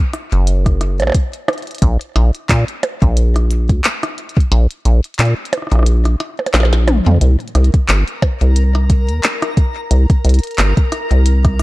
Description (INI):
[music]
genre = IDM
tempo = 89 BPM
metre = 4/4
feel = swing 56% on 16ths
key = unclear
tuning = A4 = 440 Hz
[part]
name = glitchy drum kit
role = drums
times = 0.1-11.6 s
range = handclaps, hi-hat, percussion blips, rim click, snare drum, toms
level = -19 LUFS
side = equal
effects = none
[part]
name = deep acid bass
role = bass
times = 0.3-11.6 s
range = Gb1 to Bb2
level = -12 LUFS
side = equal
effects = none
[part]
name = electronic kick drum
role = drums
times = 0.7-11.6 s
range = none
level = -13 LUFS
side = equal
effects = none
[part]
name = backwards swelling texture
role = texture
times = 7.7-11.6 s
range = Bb4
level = -26 LUFS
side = left 1 dB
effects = built-in reverb
[sound]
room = little or no reverb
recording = dark, warm production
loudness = -12 LUFS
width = side -19 dB against mid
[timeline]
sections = 0.0-11.6 A section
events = kick drops out 4.5-7.2; drum fill 6.5-7.2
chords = 0.0 N.C.; 7.2 C7(no3)